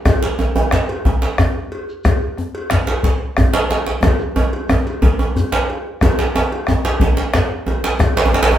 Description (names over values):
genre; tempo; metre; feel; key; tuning
west african traditional, West African drum ensemble; 121 BPM (dotted quarters); 12/8; straight; none; none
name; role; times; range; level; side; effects
bombo; percussion; 0.1-8.4 s; none; -19 LUFS; left 2 dB; none
cowbell; percussion; 0.1-8.6 s; none; -26 LUFS; left 1 dB; none
djembe; percussion; 0.1-8.6 s; none; -21 LUFS; left 2 dB; none
djembe; percussion; 0.1-8.6 s; none; -17 LUFS; right 2 dB; none
shekere; percussion; 0.1-8.4 s; none; -28 LUFS; equal; none
room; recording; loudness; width
wet studio reverb, RT60 0.8 s; band playing live in one room; -15 LUFS; side -11 dB against mid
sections
0.0-6.0 A section; 6.0-8.6 B section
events
drum fill 4.0-6.0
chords
none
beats
| 0.06 0.56 1.05 1.55 | 2.05 2.54 3.04 3.54 | 4.03 4.53 5.03 5.52 | 6.02 6.51 7.01 7.50 | 8.00 8.49